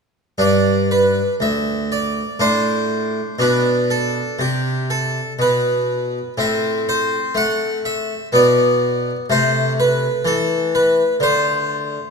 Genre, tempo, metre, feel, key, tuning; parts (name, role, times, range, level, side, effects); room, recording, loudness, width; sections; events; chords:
classical, baroque-style suite movement for harpsichord; 61 BPM; 3/4; rubato; A4 = 438 Hz
harpsichord; solo; 0.4-12.1 s; D2 to F#5; -16 LUFS; equal
moderate recital hall reverb, RT60 1.6 s; minimal, uncompressed stereo recording; -16 LUFS; side -5 dB against mid
0.4-12.1 A section
0.4 G5; 2.4 D5/A; 3.4 Bm7; 6.4 Am; 8.3 N.C.; 9.3 Am/C